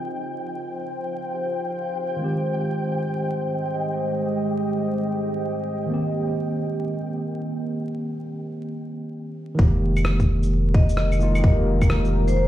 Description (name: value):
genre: future garage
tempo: free time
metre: none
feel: none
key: F minor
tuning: A4 = 441 Hz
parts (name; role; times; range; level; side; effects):
- tine electric piano; accompaniment; 0.0-12.5 s; Db3 to G4; -27 LUFS; right 1 dB; medium tremolo, vintage 12-bit sampler grit, sidechain pumping, low-pass filter, analog delay
- deep dark ambient pad; sustained chords; 0.0-12.5 s; Ab3 to F5; -28 LUFS; equal; chorus, built-in reverb, sidechain pumping
- flickering grainy texture; texture; 0.0-8.7 s; G5; -34 LUFS; left 1 dB; built-in reverb
- soft dub sub bass; bass; 9.6-12.5 s; F1; -21 LUFS; equal; sidechain pumping
- electronic kick drum; drums; 9.6-11.9 s; none; -18 LUFS; equal; small room ambience
- electronic shaker, claves and rim click; drums; 10.0-12.3 s; none; -30 LUFS; left 1 dB; small room ambience
- vibraphone with hard mallets; melody; 10.7-12.5 s; C5 to Eb5; -28 LUFS; left 2 dB; analog delay
room: light reverb, digital ambience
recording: played on a big sound system in a bare room, large studio reverb, vinyl crackle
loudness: -21 LUFS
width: side -13 dB against mid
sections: 0.0-9.6 A section; 9.6-12.5 B section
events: break 8.7-9.6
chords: 0.0 Dbmaj9; 2.2 Abmaj7; 5.9 Cm7; 9.6 Fm11